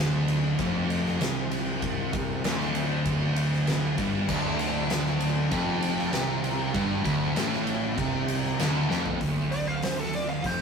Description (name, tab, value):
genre	stoner and doom metal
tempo	98 BPM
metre	4/4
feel	straight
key	D minor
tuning	A4 = 443 Hz
part	thick fuzz guitar	riff	0.0-10.6 s	D2 to C3	-30 LUFS	left 4 dB	distortion
part	thick fuzz guitar	riff	0.0-10.6 s	D2 to C3	-30 LUFS	right 6 dB	distortion
part	fuzz fingered electric bass	bass	0.0-10.6 s	D1 to C2	-36 LUFS	equal	overdrive
part	oversized low-tuned drum kit	drums	0.3-10.6 s	crash cymbal, hi-hat, kick drum, ride cymbal, snare drum, toms	-30 LUFS	left 1 dB	none
part	biting overdriven guitar	riff	4.3-9.2 s	D2 to C3	-30 LUFS	left 1 dB	none
part	fuzz lead guitar	melody	9.5-10.6 s	A4 to F5	-30 LUFS	right 3 dB	wah, distortion
room	light reverb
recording	rough rehearsal-room recording, warm saturation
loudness	-24 LUFS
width	side -6 dB against mid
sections	0.0-9.2 A section; 9.2-10.6 B section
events	drum fill 8.9-9.2; lead electric guitar solo 9.2-10.6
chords	0.0 Dm